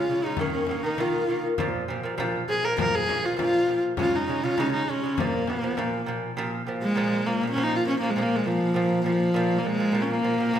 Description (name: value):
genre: mongolian traditional, Mongolian folk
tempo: 101 BPM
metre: 4/4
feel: straight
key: Bb yu mode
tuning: A4 = 440 Hz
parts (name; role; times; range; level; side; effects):
- clear horsehead fiddle; melody; 0.0-10.6 s; F3 to Bb4; -24 LUFS; equal; none
- lute; arpeggios; 0.0-10.6 s; Bb2 to Bb3; -28 LUFS; right 1 dB; none
- frame drum; percussion; 0.1-5.9 s; none; -33 LUFS; left 4 dB; none
- dark horsehead fiddle; drone; 6.4-10.6 s; Bb3; -34 LUFS; left 2 dB; none
room: wet recital hall reverb, RT60 1.3 s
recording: none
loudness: -23 LUFS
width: side -10 dB against mid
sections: 0.0-6.4 A section; 6.4-10.6 B section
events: none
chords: 0.4 Eb5; 1.6 Bb5; 4.0 Db5; 5.2 Bb5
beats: 0.39 0.99 | 1.59 2.19 2.79 3.38 | 3.98 4.58 5.17 5.77 | 6.37 6.96 7.56 8.15 | 8.75 9.34 9.94 10.53